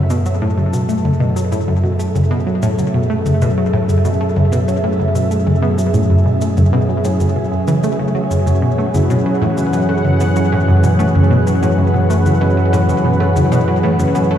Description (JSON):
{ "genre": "ambient, sequencer-driven space music", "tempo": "95 BPM", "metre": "4/4", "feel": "straight", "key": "F# minor", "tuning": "A4 = 440 Hz", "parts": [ { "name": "sweeping resonant pad", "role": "sustained chords", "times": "0.0-14.4 s", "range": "F#3 to F#5", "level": "-19 LUFS", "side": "equal", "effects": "chorus, shimmer reverb" }, { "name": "concert harp", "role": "arpeggios", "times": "0.0-0.9, 8.5-14.4 s", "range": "E3 to E4", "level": "-20 LUFS", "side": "equal", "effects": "auto-pan, ping-pong delay, shimmer reverb" }, { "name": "analog pluck", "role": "riff", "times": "0.0-14.4 s", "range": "F#2 to A3", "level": "-16 LUFS", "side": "equal", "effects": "chorus, phaser, ping-pong delay, shimmer reverb" }, { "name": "analog drone", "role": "bass", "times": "0.0-14.4 s", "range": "F#2", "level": "-20 LUFS", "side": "equal", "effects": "chorus" }, { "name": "electronic cabasa and toms", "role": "percussion", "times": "0.1-14.3 s", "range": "none", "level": "-23 LUFS", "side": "left 2 dB", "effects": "ping-pong delay" } ], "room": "moderate huge ambient reverb, RT60 8.7 s", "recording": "played on a big sound system in a bare room, large studio reverb", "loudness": "-13 LUFS", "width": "side -10 dB against mid", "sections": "0.0-14.4 A section", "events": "none", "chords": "0.0 F#m7", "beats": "0.26 | 0.89 1.52 2.15 2.78 | 3.42 4.05 4.68 5.31 | 5.94 6.57 7.21 7.84 | 8.47 9.10 9.73 10.36 | 10.99 11.63 12.26 12.89 | 13.52 14.15" }